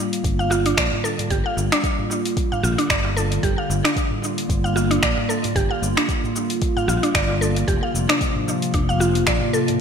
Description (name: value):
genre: organic downtempo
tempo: 113 BPM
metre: 4/4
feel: swing 57% on 16ths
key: G minor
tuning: A4 = 440 Hz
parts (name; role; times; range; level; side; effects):
- warbly tape-like pad; sustained chords; 0.0-9.8 s; C3 to F4; -24 LUFS; equal; chorus, built-in reverb, sidechain pumping
- mallet-like synth pluck; arpeggios; 0.0-9.8 s; D4 to F5; -24 LUFS; right 1 dB; chorus, digital delay
- deep house drum kit; drums; 0.1-9.8 s; cabasa, finger snaps, hi-hat; -25 LUFS; equal; overdrive, gated reverb
- fretless electric bass; bass; 0.2-9.4 s; F1 to Bb1; -23 LUFS; equal; sidechain pumping
- electronic kick drum; drums; 0.2-9.4 s; none; -24 LUFS; equal; overdrive
- darbuka; percussion; 0.5-9.8 s; none; -33 LUFS; right 1 dB; none
room: moderate lush hall reverb, RT60 1.9 s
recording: bright 1980s-style digital production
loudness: -18 LUFS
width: side -7 dB against mid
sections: 0.0-9.8 A section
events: none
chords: 0.0 Gm7; 7.7 Fsus4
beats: 0.24 0.77 | 1.30 1.84 2.37 2.90 | 3.43 3.96 4.49 5.02 | 5.55 6.08 6.62 7.15 | 7.68 8.21 8.74 9.27 | 9.80